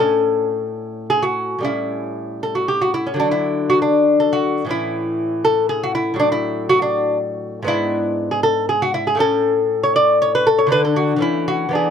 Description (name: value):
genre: classical, baroque-style dance for lute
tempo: 118 BPM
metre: 3/4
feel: rubato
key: A major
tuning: A4 = 445 Hz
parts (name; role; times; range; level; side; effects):
- lute; solo; 0.0-11.9 s; G#2 to D5; -16 LUFS; left 1 dB; none
room: light reverb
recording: close, detailed microphones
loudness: -16 LUFS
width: side -8 dB against mid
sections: 0.0-1.6 A section; 1.6-11.9 A section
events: none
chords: 0.0 A; 1.6 A7; 3.2 D; 4.7 A; 6.2 Dadd9/A; 7.7 E7/G#; 9.2 A; 10.7 D; 11.2 A/E